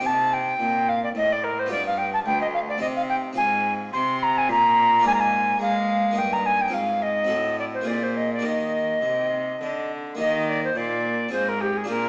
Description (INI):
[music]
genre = classical, baroque-style sonata movement with continuo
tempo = 107 BPM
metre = 3/4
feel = straight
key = Eb major from 3.4 s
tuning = A4 = 439 Hz
[part]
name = mellow alto recorder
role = melody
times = 0.0-12.1 s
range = G4 to C6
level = -24 LUFS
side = equal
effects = none
[part]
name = harpsichord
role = accompaniment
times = 0.0-12.1 s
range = D2 to Eb5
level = -34 LUFS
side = equal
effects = none
[part]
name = rich cello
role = bass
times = 0.0-12.1 s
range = D2 to Ab3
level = -32 LUFS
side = equal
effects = none
[sound]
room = moderate recital hall reverb, RT60 1.8 s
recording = small speaker sound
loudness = -23 LUFS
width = mono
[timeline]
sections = 0.0-10.2 A section; 10.2-12.1 B section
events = none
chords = 0.0 Cm; 1.7 G7; 2.8 Cm; 3.4 Fm/Ab; 5.0 Bb7/Ab; 6.2 Eb/G; 6.7 Fm/Ab; 7.3 Adim7; 7.9 Bb5; 8.4 Eb; 11.3 Fm/Ab